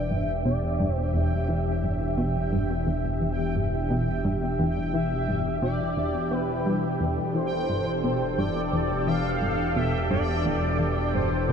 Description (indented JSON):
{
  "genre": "ambient, sequencer-driven space music",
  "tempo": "87 BPM",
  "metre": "4/4",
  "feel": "straight",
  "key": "E minor",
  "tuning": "A4 = 442 Hz",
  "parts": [
    { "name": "expressive synth lead", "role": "melody", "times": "0.0-11.5 s", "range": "B4 to F5", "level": "-31 LUFS", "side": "equal", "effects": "ensemble chorus, ping-pong delay" },
    { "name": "sweeping resonant pad", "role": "sustained chords", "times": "0.0-11.5 s", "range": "B2 to E5", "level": "-28 LUFS", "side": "left 1 dB", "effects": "chorus" },
    { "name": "fat analog bass", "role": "bass", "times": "0.0-11.5 s", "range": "E1", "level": "-31 LUFS", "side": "equal", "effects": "tube saturation" },
    { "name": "bubbling stepped-filter texture", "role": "texture", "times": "0.0-11.5 s", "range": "G5", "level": "-36 LUFS", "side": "right 2 dB", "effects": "chorus, built-in reverb" },
    { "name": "plucky analog bass", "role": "riff", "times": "0.1-11.5 s", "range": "E2 to B3", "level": "-29 LUFS", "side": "equal", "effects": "lush chorus, ping-pong delay" }
  ],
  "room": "moderate huge ambient reverb, RT60 9.1 s",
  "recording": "dark, warm production",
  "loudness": "-23 LUFS",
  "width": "side -7 dB against mid",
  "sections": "0.0-11.5 A section",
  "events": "filter sweep on analog synth bass 0.0-11.5",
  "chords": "0.0 Em7"
}